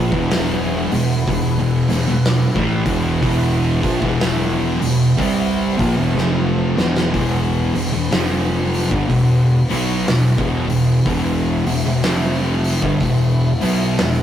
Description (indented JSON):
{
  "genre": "stoner and doom metal",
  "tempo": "61 BPM",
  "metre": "4/4",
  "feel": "swing 62% on 8ths",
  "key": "unclear",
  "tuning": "A4 = 442 Hz",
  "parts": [
    { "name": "phased string machine", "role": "sustained chords", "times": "0.0-14.2 s", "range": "E4 to F#5", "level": "-30 LUFS", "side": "left 2 dB", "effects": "ensemble chorus, phaser" },
    { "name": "fuzz guitar", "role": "riff", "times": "0.0-7.1 s", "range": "E2 to C4", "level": "-23 LUFS", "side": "right 2 dB", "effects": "none" },
    { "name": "thick fuzz guitar", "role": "riff", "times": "0.0-14.2 s", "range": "E2 to C4", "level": "-20 LUFS", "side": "left 4 dB", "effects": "distortion" },
    { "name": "thick fuzz guitar", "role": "riff", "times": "0.0-14.2 s", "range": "E2 to C4", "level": "-21 LUFS", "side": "right 4 dB", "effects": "distortion" },
    { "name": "fuzz picked electric bass", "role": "bass", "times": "0.0-14.2 s", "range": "E1 to C2", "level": "-23 LUFS", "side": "right 1 dB", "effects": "overdrive" },
    { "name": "oversized low-tuned drum kit", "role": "drums", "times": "0.1-14.2 s", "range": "hi-hat, kick drum, snare drum", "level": "-23 LUFS", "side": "equal", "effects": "none" }
  ],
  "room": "light reverb",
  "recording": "rough rehearsal-room recording, warm saturation",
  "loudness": "-15 LUFS",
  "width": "side -10 dB against mid",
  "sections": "0.0-7.1 A section; 7.1-14.2 B section",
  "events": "drum fill 6.2-7.1",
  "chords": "0.0 Em"
}